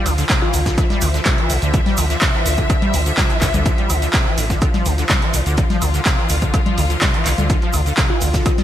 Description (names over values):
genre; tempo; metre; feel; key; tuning
acid house; 125 BPM; 4/4; straight; D minor; A4 = 440 Hz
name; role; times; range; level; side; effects
warm studio string section; sustained chords; 0.0-8.6 s; F3 to E5; -25 LUFS; left 2 dB; sidechain pumping
deep acid bass; riff; 0.0-8.6 s; C3 to G3; -23 LUFS; equal; overdrive, ensemble chorus, sidechain pumping, ping-pong delay
round analog bass; bass; 0.1-8.4 s; A1 to D2; -19 LUFS; equal; sidechain pumping
gated 80s drum kit; drums; 0.1-8.6 s; hi-hat, shaker, snare drum; -32 LUFS; equal; none
punchy analog drum machine; drums; 0.1-8.6 s; congas, handclaps, hi-hat, woodblock; -22 LUFS; equal; overdrive, gated reverb
egg shaker; percussion; 0.1-8.6 s; none; -31 LUFS; right 1 dB; none
electronic kick drum; drums; 0.3-8.6 s; none; -18 LUFS; equal; overdrive
bell-like FM electric piano; melody; 0.4-1.1, 8.1-8.6 s; F4; -26 LUFS; left 2 dB; chorus, ping-pong delay
room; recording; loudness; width
light reverb, small room ambience; bright 1980s-style digital production; -14 LUFS; side -11 dB against mid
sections
0.0-8.6 A section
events
none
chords
0.0 Dm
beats
0.30 | 0.78 1.26 1.74 2.22 | 2.70 3.18 3.66 4.14 | 4.62 5.10 5.58 6.06 | 6.54 7.02 7.50 7.98 | 8.46